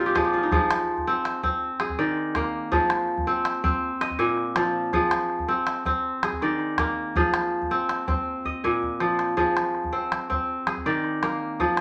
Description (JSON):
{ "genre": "west african traditional, West African string and xylophone music", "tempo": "108 BPM (dotted quarters)", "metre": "12/8", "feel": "straight", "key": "F dorian", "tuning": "A4 = 440 Hz", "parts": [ { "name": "kora", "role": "arpeggios", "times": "0.0-11.8 s", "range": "Bb2 to Ab5", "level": "-26 LUFS", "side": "equal", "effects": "none" }, { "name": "calabash", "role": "percussion", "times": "0.1-11.8 s", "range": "none", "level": "-31 LUFS", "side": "equal", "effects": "none" } ], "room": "wet studio reverb, RT60 0.6 s", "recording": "nothing above 10.8 kHz", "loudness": "-25 LUFS", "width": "mono", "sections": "0.5-11.8 A section", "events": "kora fill 0.0-0.5; drum fill 8.4-9.4", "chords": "0.0 Bb5; 0.5 Fm; 1.6 Eb5; 2.7 Fm; 3.8 Bb5; 4.9 Fm; 6.0 Eb5; 7.1 Fm; 8.3 Bb5; 9.4 Fm; 10.5 Eb5" }